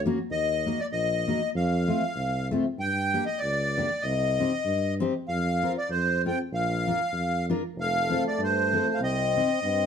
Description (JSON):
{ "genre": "alpine folk, alpine dance band", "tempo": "97 BPM", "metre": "2/4", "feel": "swing 55% on 8ths", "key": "unclear", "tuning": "A4 = 439 Hz", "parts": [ { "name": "mellow tuba", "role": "bass", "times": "0.0-9.9 s", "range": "F1 to G2", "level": "-30 LUFS", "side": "equal", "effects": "none" }, { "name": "fingerpicked steel-string acoustic guitar", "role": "accompaniment", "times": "0.1-9.5 s", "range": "A3 to Bb4", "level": "-29 LUFS", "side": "left 3 dB", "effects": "none" }, { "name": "accordion", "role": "melody", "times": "0.3-9.9 s", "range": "C5 to G5", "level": "-27 LUFS", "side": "left 1 dB", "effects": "light tremolo tuning" }, { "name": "clear euphonium", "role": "second line", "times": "7.8-9.9 s", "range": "A3 to C4", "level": "-30 LUFS", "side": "right 2 dB", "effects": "none" } ], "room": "moderate studio reverb, RT60 0.8 s", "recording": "band playing live in one room", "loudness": "-24 LUFS", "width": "side -7 dB against mid", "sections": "0.0-9.9 A section", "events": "none", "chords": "0.3 Ebm; 1.6 F; 2.8 Gm; 4.0 Cm; 5.3 Fsus4; 5.9 F; 6.5 Bb; 7.8 Fadd9; 9.0 Cm" }